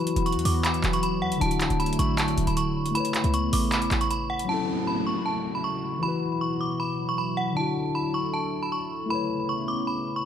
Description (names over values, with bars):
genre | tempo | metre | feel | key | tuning
hip hop, trap | 156 BPM | 4/4 | half-time | F# minor | A4 = 441 Hz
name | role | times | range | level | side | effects
metallic FM bell | melody | 0.0-10.2 s | F#5 to D6 | -28 LUFS | equal | chorus, low-pass filter, ping-pong delay
tine electric piano | accompaniment | 0.0-10.3 s | D3 to C#5 | -30 LUFS | left 5 dB | low-pass filter
warm analog pad | sustained chords | 0.0-10.3 s | B2 to A4 | -31 LUFS | right 2 dB | chorus
booming analog drum machine | drums | 0.1-4.5 s | handclaps, hi-hat | -30 LUFS | equal | none
short 808-style bass | bass | 0.2-4.5 s | D1 to E2 | -28 LUFS | right 1 dB | none
downlifter | sound effects | 4.5-7.6 s | none | -36 LUFS | right 3 dB | none
room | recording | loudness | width
light reverb, digital ambience | none | -24 LUFS | side -9 dB against mid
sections
0.0-4.5 A section; 4.5-10.3 B section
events
none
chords
0.0 Esus2; 1.4 Dadd9; 3.0 Aadd9; 4.5 F#m7; 6.0 Esus2; 7.6 Dadd9; 9.1 Aadd9